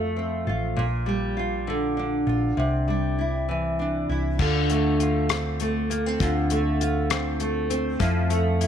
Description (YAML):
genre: six-eight pop ballad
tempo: 66 BPM (dotted quarters)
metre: 6/8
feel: straight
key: unclear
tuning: A4 = 442 Hz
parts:
  - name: nylon-string guitar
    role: accompaniment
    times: 0.0-8.7 s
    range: Bb2 to F4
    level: -24 LUFS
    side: equal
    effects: double-tracked left and right
  - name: hollow-body short-scale fingered electric bass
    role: bass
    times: 0.0-8.7 s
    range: A1 to F2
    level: -27 LUFS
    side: equal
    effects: none
  - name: damped 70s drum kit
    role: drums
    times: 4.4-8.7 s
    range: crash cymbal, hi-hat, kick drum, rim click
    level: -28 LUFS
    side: left 4 dB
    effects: none
room: light reverb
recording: 1960s-style stereo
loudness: -22 LUFS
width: side -8 dB against mid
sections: 0.0-4.4 A section; 4.4-8.7 B section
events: none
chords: 0.0 F; 0.8 Bb6; 2.6 Cadd9; 4.4 Dm7; 8.0 Fmaj7